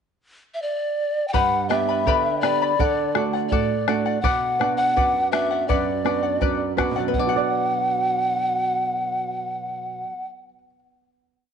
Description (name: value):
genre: andean folk, Andean ensemble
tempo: 83 BPM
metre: 2/4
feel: straight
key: B minor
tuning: A4 = 441 Hz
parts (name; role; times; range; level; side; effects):
- mellow hollow polished pan flute; melody; 0.5-10.3 s; D5 to G5; -23 LUFS; equal; slapback echo
- charango; accompaniment; 1.3-10.8 s; G4 to B5; -25 LUFS; left 10 dB; none
- flamenco guitar; accompaniment; 1.3-10.5 s; F#2 to D5; -26 LUFS; right 9 dB; none
- bombo; percussion; 1.3-7.5 s; none; -25 LUFS; equal; none
room: moderate echo chamber reverb, RT60 1.6 s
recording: 1960s-style stereo with parts hard left and right, nothing above 10.9 kHz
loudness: -20 LUFS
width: side -7 dB against mid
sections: 0.0-1.3 pickup bar; 1.3-7.1 A section; 7.1-10.0 final chord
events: none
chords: 0.0 N.C.; 1.3 G; 2.8 D; 4.2 Bm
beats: 0.61 | 1.34 2.07 | 2.79 3.52 | 4.25 4.97 | 5.70 6.42 | 7.14 7.87 | 8.60 9.32